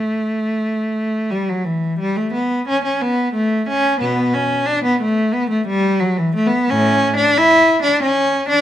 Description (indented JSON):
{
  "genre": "classical, baroque-style suite movement for unaccompanied cello",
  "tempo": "89 BPM",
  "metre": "4/4",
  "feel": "rubato",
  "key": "unclear",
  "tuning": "A4 = 438 Hz",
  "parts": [
    { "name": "rich cello", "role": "solo", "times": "0.0-8.6 s", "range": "A2 to E4", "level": "-15 LUFS", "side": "equal", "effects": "none" }
  ],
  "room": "light reverb",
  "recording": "close, detailed microphones",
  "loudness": "-15 LUFS",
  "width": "side -11 dB against mid",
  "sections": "0.0-8.6 A section",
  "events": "none",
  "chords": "none"
}